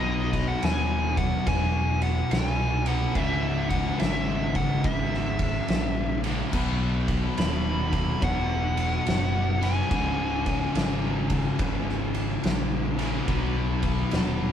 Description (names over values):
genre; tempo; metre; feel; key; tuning
stoner and doom metal; 71 BPM; 4/4; swing 65% on 8ths; C# minor; A4 = 441 Hz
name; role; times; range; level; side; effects
fuzz lead guitar; melody; 0.0-12.1 s; D#5 to B5; -31 LUFS; left 2 dB; wah, distortion, analog delay
distorted electric guitar; riff; 0.0-14.5 s; C#2 to B3; -33 LUFS; equal; overdrive
thick fuzz guitar; riff; 0.0-14.5 s; C#2 to B3; -30 LUFS; left 7 dB; distortion
thick fuzz guitar; riff; 0.0-14.5 s; C#2 to B3; -34 LUFS; right 6 dB; distortion
overdriven picked electric bass; bass; 0.0-14.5 s; C#1 to B#1; -30 LUFS; equal; none
oversized low-tuned drum kit; drums; 0.3-14.4 s; crash cymbal, kick drum, ride cymbal, snare drum; -28 LUFS; equal; none
room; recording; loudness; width
light reverb; band playing live in one room; -23 LUFS; side -9 dB against mid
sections
0.0-14.5 A section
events
none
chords
0.0 B; 3.2 C#m; 6.5 B; 9.9 C#5; 13.3 B